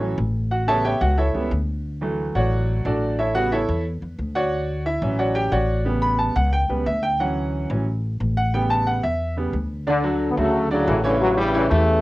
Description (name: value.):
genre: latin.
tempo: 179 BPM.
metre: 4/4.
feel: straight.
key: unclear.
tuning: A4 = 440 Hz.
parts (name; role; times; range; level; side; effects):
bright grand piano; accompaniment; 0.0-12.0 s; C#3 to B5; -22 LUFS; right 1 dB; cassette tape.
upright bass; bass; 0.0-12.0 s; A1 to E2; -24 LUFS; equal; none.
mellow trombone section; second line; 9.9-11.8 s; D3 to F#3; -22 LUFS; left 2 dB; cassette tape.
clear trombone section; melody; 10.3-12.0 s; G2 to B3; -20 LUFS; left 1 dB; cassette tape.
room: moderate studio reverb, RT60 0.5 s.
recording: home recording on cassette.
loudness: -19 LUFS.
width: side -18 dB against mid.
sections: 0.0-9.9 A section; 9.9-12.0 B section.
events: grand piano solo 0.0-9.9.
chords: 0.0 Dmaj7 (rootless); 0.5 A7; 1.8 Dmaj7; 3.2 A7; 4.5 Dmaj7; 5.9 A7; 7.2 Dmaj7; 8.5 A7.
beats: 0.18 | 0.51 0.85 1.18 1.51 | 1.85 2.18 2.52 2.85 | 3.18 3.52 3.85 4.19 | 4.52 4.86 5.19 5.52 | 5.86 6.19 6.53 6.86 | 7.20 7.53 7.87 8.20 | 8.53 8.87 9.20 9.54 | 9.87 10.21 10.54 10.87 | 11.21 11.54 11.88.